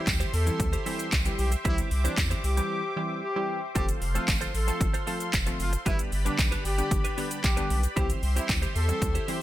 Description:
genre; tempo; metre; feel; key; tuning
dance-pop; 114 BPM; 4/4; straight; C major; A4 = 440 Hz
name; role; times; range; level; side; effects
mellow horn section; melody; 0.0-9.2 s; D4 to A4; -34 LUFS; left 1 dB; ping-pong delay
funky polysynth comp; accompaniment; 0.0-9.4 s; D3 to A4; -35 LUFS; equal; chorus, sidechain pumping
warm analog pad; sustained chords; 0.0-9.4 s; G4 to D6; -37 LUFS; equal; chorus, tremolo, sidechain pumping
direct-recorded clean electric guitar; riff; 0.0-9.4 s; D4 to C5; -37 LUFS; right 5 dB; analog chorus
saturated sub bass; bass; 0.1-9.2 s; F1 to E2; -28 LUFS; equal; sidechain pumping
house drum kit; drums; 0.1-9.4 s; handclaps, hi-hat, kick drum, shaker; -28 LUFS; equal; overdrive
tambourine; percussion; 0.1-8.6 s; none; -40 LUFS; right 10 dB; none
room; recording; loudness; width
digital ambience; none; -25 LUFS; side -14 dB against mid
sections
0.0-9.4 A section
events
break 2.7-3.8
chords
0.0 C; 3.8 F; 5.9 G; 8.0 C

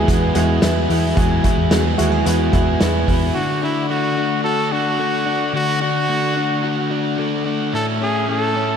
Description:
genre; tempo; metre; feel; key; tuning
jangly indie pop; 110 BPM; 4/4; straight; unclear; A4 = 440 Hz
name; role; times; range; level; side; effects
biting overdriven guitar; accompaniment; 0.0-8.8 s; A2 to G#4; -24 LUFS; right 4 dB; slapback echo
warm upright piano; accompaniment; 0.0-3.4 s; G#3 to G#4; -22 LUFS; right 4 dB; slapback echo
direct-recorded clean electric guitar; arpeggios; 0.0-8.8 s; A2 to G#4; -22 LUFS; left 6 dB; slapback echo, tape echo
vintage muted picked electric bass; bass; 0.0-3.3 s; D#2 to E2; -20 LUFS; equal; none
vintage drum kit; drums; 0.1-3.2 s; hi-hat, kick drum, snare drum; -20 LUFS; equal; none
bright trumpet; melody; 3.3-8.8 s; E4 to A4; -21 LUFS; right 1 dB; none
room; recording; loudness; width
moderate lush hall reverb, RT60 2.4 s; big arena sound; -16 LUFS; side -7 dB against mid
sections
0.0-3.4 A section; 3.4-8.8 B section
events
none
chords
0.0 Eadd9; 3.4 D; 7.7 A

